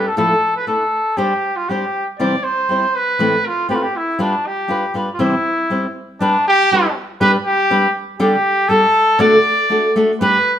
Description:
mexican folk; 120 BPM; 2/4; straight; C major, G major from 6.2 s; A4 = 440 Hz
bright trumpet; melody; 0.0-10.6 s; D4 to D5; -16 LUFS; equal
flamenco guitar; accompaniment; 0.0-10.4 s; A2 to C5; -17 LUFS; left 1 dB
wet stone room reverb, RT60 1.0 s; band playing live in one room; -14 LUFS; side -10 dB against mid
0.0-6.2 A section; 6.2-10.6 B section
0.2 Dmadd9/A; 1.2 Gsus4; 2.2 C; 3.2 Amadd9; 4.2 G7; 5.2 C; 6.2 G; 8.2 Dsus4; 9.2 D

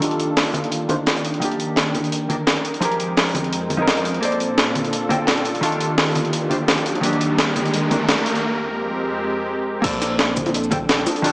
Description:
liquid drum and bass; 171 BPM; 4/4; straight; Bb major; A4 = 440 Hz
vintage hollow-body jazz guitar; accompaniment; 0.0-11.3 s; Eb3 to G5; -22 LUFS; equal; low-pass filter, digital delay
warm analog pad; sustained chords; 0.0-11.3 s; F2 to G5; -25 LUFS; equal; chorus
breakbeat sampler-style drum kit; drums; 0.0-11.3 s; crash cymbal, hi-hat, shaker, snare drum; -21 LUFS; equal
crunchy breakbeat drum kit; drums; 0.0-11.3 s; hi-hat, snare drum; -28 LUFS; equal; high-pass filter on hats, high-pass filter on snare, high-pass filter on room
congas and bongos; percussion; 0.5-8.0, 10.4-11.1 s; -28 LUFS; equal
riser; sound effects; 6.3-8.4 s; -27 LUFS; equal
warm sub bass; bass; 9.8-11.3 s; Eb1 to Bb1; -33 LUFS; equal; tube saturation
electronic kick drum; drums; 9.8-10.8 s; -28 LUFS; equal
wet concert hall reverb, RT60 2.0 s; small speaker sound; -17 LUFS; side -23 dB against mid
0.0-9.8 A section; 9.8-11.3 B section
build-up 0.0-9.8; filter sweep on hollow-body jazz guitar 0.0-9.8; riser 6.3-8.4; break 8.4-9.8; drop 9.8-11.3
0.0 Ebmaj9#11; 1.4 Ebmaj7; 2.8 Fm11; 4.2 Bbmaj9; 5.5 Ebmaj9#11; 7.0 Ebmaj7; 8.4 Fmadd9; 9.8 Bbmaj9

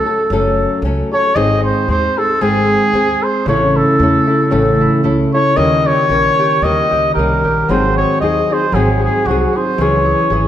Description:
mexican folk, mariachi; 114 BPM; 2/4; swing 55% on 8ths; A4 = 440 Hz
warm trumpet; melody; 0.0-10.5 s; F#4 to D#5; -15 LUFS; equal
nylon-string guitar; accompaniment; 0.0-10.5 s; F#2 to A#4; -17 LUFS; left 2 dB
upright bass; bass; 0.3-10.5 s; F#1 to E2; -20 LUFS; right 1 dB
concert harp; arpeggios; 3.5-10.5 s; C#3 to G#4; -18 LUFS; right 1 dB; slapback echo
wet recital hall reverb, RT60 1.7 s; -11 LUFS; side -11 dB against mid
0.0-10.5 A section
0.0 F#m; 1.4 G#; 3.5 A; 5.6 D#7; 7.7 G#7; 9.8 C#m

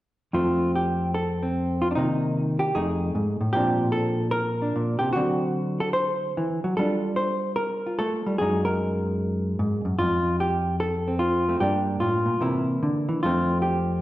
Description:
solo jazz; 149 BPM; 4/4; swing 64% on 8ths, rubato; F major; A4 = 440 Hz
hollow-body jazz guitar; solo; 0.3-14.0 s; F2 to C5; -22 LUFS; equal
wet recital hall reverb, RT60 1.5 s; recorded in a church or concert hall; -22 LUFS; side -15 dB against mid
0.3-13.2 A section
0.3 Fadd9; 2.0 Cm7; 2.8 F7#9; 3.6 Bbmaj9; 5.2 D7; 6.8 Gm11; 8.4 Gb69; 10.0 Fadd9; 11.6 Gm7; 12.4 C7; 13.2 Fadd9

